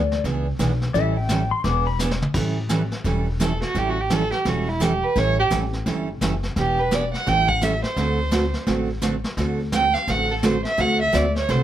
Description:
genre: country, western swing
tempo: 171 BPM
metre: 4/4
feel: swing 63% on 8ths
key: A mixolydian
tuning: A4 = 435 Hz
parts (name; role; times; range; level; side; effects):
- pedal steel guitar; second line; 0.0-2.0 s; D5 to D6; -25 LUFS; left 7 dB; none
- upright bass; bass; 0.0-11.6 s; E1 to D2; -25 LUFS; left 1 dB; none
- vintage brush drum kit; drums; 0.1-11.6 s; brushed snare drum, crash cymbal, hi-hat, kick drum, snare drum, toms; -29 LUFS; left 1 dB; none
- picked steel-string acoustic guitar; accompaniment; 0.2-11.6 s; D3 to A4; -25 LUFS; right 3 dB; none
- dark fiddle; melody; 3.4-11.6 s; E4 to G5; -22 LUFS; right 3 dB; none
room: moderate club reverb, RT60 0.8 s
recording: none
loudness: -19 LUFS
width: side -11 dB against mid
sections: 0.0-2.3 A section; 2.3-11.6 A section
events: pedal steel guitar solo 0.0-2.3; drum fill 2.0-2.3; fiddle solo 2.3-11.6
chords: 0.0 E7; 0.9 A7; 1.6 E7; 2.3 A7; 6.6 Em7; 7.3 A7; 8.0 D7

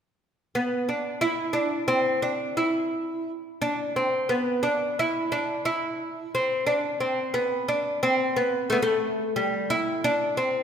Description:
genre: turkish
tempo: 178 BPM (eighths)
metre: 9/8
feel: straight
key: E makam nihavent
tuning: A4 = 440 Hz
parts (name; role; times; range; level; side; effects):
- oud; solo; 0.6-10.6 s; G3 to E4; -23 LUFS; equal; none
room: moderate concert hall reverb, RT60 1.8 s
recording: minimal, uncompressed stereo recording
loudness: -24 LUFS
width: side -8 dB against mid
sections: 0.6-3.6 A section; 3.6-10.6 B section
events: none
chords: none

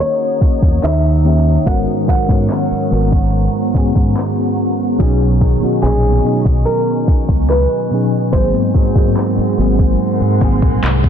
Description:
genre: contemporary R&B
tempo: 72 BPM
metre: 4/4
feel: straight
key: unclear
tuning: A4 = 435 Hz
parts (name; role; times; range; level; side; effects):
- warm baby grand piano; melody; 0.0-11.1 s; G#4 to F#5; -21 LUFS; equal; none
- FM electric piano with auto-pan; accompaniment; 0.0-11.1 s; G#2 to E5; -18 LUFS; left 3 dB; phaser
- ethereal airy pad; sustained chords; 0.0-11.1 s; B3 to D#6; -23 LUFS; right 2 dB; ensemble chorus, built-in reverb
- clean electric guitar; arpeggios; 0.0-11.1 s; G#2 to F#4; -22 LUFS; right 10 dB; spring reverb
- smooth R&B drum kit; drums; 0.0-11.1 s; handclaps, hi-hat, kick drum; -15 LUFS; equal; none
- deep dub fingered electric bass; bass; 0.4-11.1 s; G#1 to G#2; -16 LUFS; equal; none
room: digital ambience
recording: dense, heavily limited modern master, low-pass filter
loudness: -12 LUFS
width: side -8 dB against mid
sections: 0.0-11.1 A section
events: filter sweep 0.0-11.1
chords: 0.0 D#m7; 0.8 D#7b9; 1.7 G#m11; 5.0 B69; 8.3 G#9

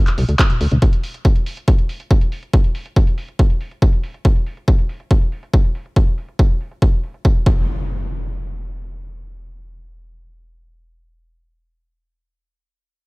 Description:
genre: uplifting trance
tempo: 140 BPM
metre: 4/4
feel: straight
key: unclear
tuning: A4 = 440 Hz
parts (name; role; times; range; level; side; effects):
- big-room dance drum kit; drums; 0.1-7.4 s; handclaps, hi-hat, toms; -24 LUFS; equal; overdrive, low-pass filter on hats, studio reverb, low-pass filter on snare, low-pass filter on toms
- plucky analog bass; bass; 0.2-0.8 s; C2 to D2; -16 LUFS; equal; sidechain pumping
- electronic kick drum; drums; 0.4-7.5 s; none; -13 LUFS; equal; studio reverb
- impact; sound effects; 7.5-11.3 s; none; -28 LUFS; equal; none
room: little or no reverb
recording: none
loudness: -15 LUFS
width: side -28 dB against mid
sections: 0.0-7.7 A section; 7.7-11.1 B section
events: none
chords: none

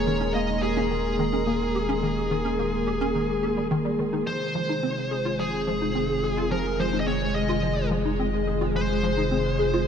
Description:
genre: ambient, sequencer-driven space music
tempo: 107 BPM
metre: 4/4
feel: straight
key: F minor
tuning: A4 = 440 Hz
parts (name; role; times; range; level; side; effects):
- smooth overdriven lead guitar; melody; 0.0-9.9 s; Ab4 to Eb5; -29 LUFS; left 1 dB; shimmer reverb, tape echo
- sweeping resonant pad; sustained chords; 0.0-9.9 s; C3 to Bb4; -27 LUFS; left 1 dB; wide subtle chorus, shimmer reverb
- round analog bass; bass; 0.0-9.9 s; Eb1 to F1; -32 LUFS; equal; none
- pulsing gated texture; texture; 0.0-9.9 s; Ab3 to C6; -36 LUFS; right 3 dB; chorus, built-in reverb, shimmer reverb
- hollow square pluck; riff; 0.1-9.8 s; Eb3 to Ab4; -29 LUFS; equal; ensemble chorus, shimmer reverb, tape echo
room: wet lush hall reverb, RT60 2.8 s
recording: none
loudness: -23 LUFS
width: side -7 dB against mid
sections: 0.0-9.9 A section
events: none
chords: 0.0 Ebsus4; 4.3 Fm7

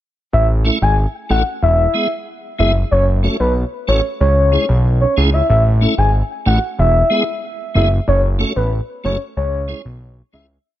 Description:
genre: dancehall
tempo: 93 BPM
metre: 4/4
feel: straight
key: C# minor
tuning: A4 = 440 Hz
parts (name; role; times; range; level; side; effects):
- soft octave-layered synth lead; melody; 0.3-10.5 s; B4 to G#5; -18 LUFS; left 1 dB; chorus, ping-pong delay
- fat analog bass; bass; 0.3-10.6 s; E1 to C#2; -15 LUFS; equal; none
- tonewheel organ; accompaniment; 0.6-10.5 s; G#3 to A4; -22 LUFS; right 1 dB; overdrive, chorus vibrato, slow rotary speaker
room: digital ambience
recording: none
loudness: -14 LUFS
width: side -13 dB against mid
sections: 0.3-10.7 chorus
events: fade-out 8.1-10.7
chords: 0.3 A; 1.6 E; 2.9 F#m; 4.2 C#m; 5.5 A; 6.8 E; 8.1 F#m; 9.4 C#m

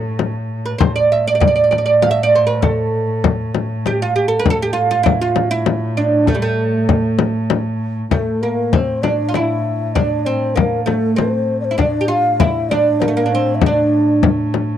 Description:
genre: Arabic maqam ensemble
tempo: 98 BPM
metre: 3/4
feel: straight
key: A maqam bayati, A maqam kurd from 8.1 s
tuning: A4 = 444 Hz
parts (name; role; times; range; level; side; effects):
- oud; melody; 0.0-14.2 s; G3 to F5; -16 LUFS; right 4 dB; none
- warm cello; drone; 0.0-14.8 s; A2; -22 LUFS; equal; stereo widening
- frame drum; percussion; 0.2-14.7 s; none; -17 LUFS; left 5 dB; none
- breathy mellow low ney; second line; 8.1-14.2 s; A4 to F5; -21 LUFS; left 7 dB; none
room: light reverb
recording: dry, close 1970s-style studio recording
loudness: -14 LUFS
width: side -10 dB against mid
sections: 0.0-8.1 A section; 8.1-14.8 B section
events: none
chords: none

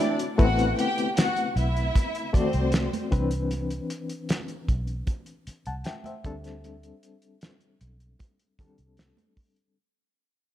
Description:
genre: lush 1970s-style soul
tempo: 77 BPM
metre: 4/4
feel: straight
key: unclear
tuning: A4 = 439 Hz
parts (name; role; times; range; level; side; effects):
- rich studio violin section; second line; 0.0-3.1 s; C4 to G5; -29 LUFS; left 1 dB; none
- reed electric piano; accompaniment; 0.0-9.8 s; E3 to A5; -30 LUFS; left 4 dB; tremolo
- cloth-damped thuddy drum kit; drums; 0.0-9.7 s; hi-hat, kick drum, snare drum; -25 LUFS; equal; none
- vintage muted fingered electric bass; bass; 0.4-9.1 s; A1 to D2; -28 LUFS; equal; none
- congas; percussion; 0.4-9.4 s; none; -37 LUFS; right 6 dB; none
room: light reverb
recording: dark, warm production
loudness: -24 LUFS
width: side -12 dB against mid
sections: 0.0-9.8 A section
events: fade-out 0.0-9.8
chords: 0.0 Am69; 3.1 Cmaj9; 6.2 D7sus4

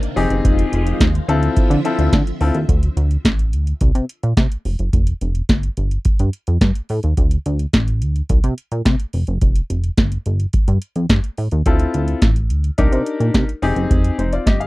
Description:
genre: early-eighties boogie funk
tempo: 107 BPM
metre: 4/4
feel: straight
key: D phrygian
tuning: A4 = 437 Hz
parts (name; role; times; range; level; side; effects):
- phased string machine; sustained chords; 0.0-2.7 s; C3 to E5; -27 LUFS; equal; ensemble chorus, phaser
- booming analog drum machine; drums; 0.0-14.7 s; hi-hat, kick drum, snare drum; -16 LUFS; equal; overdrive
- clear baby grand piano; accompaniment; 0.2-2.6, 11.7-14.7 s; C4 to F5; -20 LUFS; left 4 dB; none
- chorused synth bass; bass; 0.2-14.7 s; F1 to D3; -18 LUFS; equal; none
room: little or no reverb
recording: dry, close 1970s-style studio recording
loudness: -15 LUFS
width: side -20 dB against mid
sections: 0.0-2.7 A section; 2.7-14.7 B section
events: none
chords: 0.2 Fm9; 1.3 Dm9; 2.7 D5; 3.8 Bbsus2/C; 4.7 Fsus2; 5.8 Gsus2; 7.2 D5; 8.3 Bbsus2/C; 9.1 Fsus2; 10.3 Gsus2; 11.7 Dm9; 12.8 Cm9; 13.6 Fm9

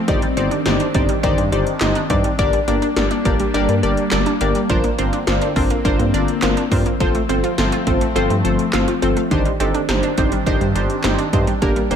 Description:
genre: synth-pop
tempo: 104 BPM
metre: 4/4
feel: straight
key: unclear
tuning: A4 = 440 Hz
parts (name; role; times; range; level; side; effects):
- phased analog pad; sustained chords; 0.0-12.0 s; D3 to D4; -24 LUFS; left 2 dB; phaser, chorus
- funky polysynth comp; accompaniment; 0.1-12.0 s; Bb3 to Eb5; -20 LUFS; left 2 dB; chorus
- wide unison pluck; arpeggios; 0.1-12.0 s; D3 to F5; -25 LUFS; right 4 dB; ping-pong delay
- smooth synth bass; bass; 0.1-12.0 s; G1 to G2; -22 LUFS; equal; none
- 80s electronic pad drums; drums; 0.1-12.0 s; handclaps, hi-hat, kick drum, snare drum; -22 LUFS; equal; gated reverb
room: light reverb, digital ambience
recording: none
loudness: -15 LUFS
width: side -8 dB against mid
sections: 0.0-12.0 A section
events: none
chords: 0.1 Cmadd9/G; 2.4 Gm; 4.7 Bbadd9/G; 7.0 F/G; 9.3 Cmadd9/G

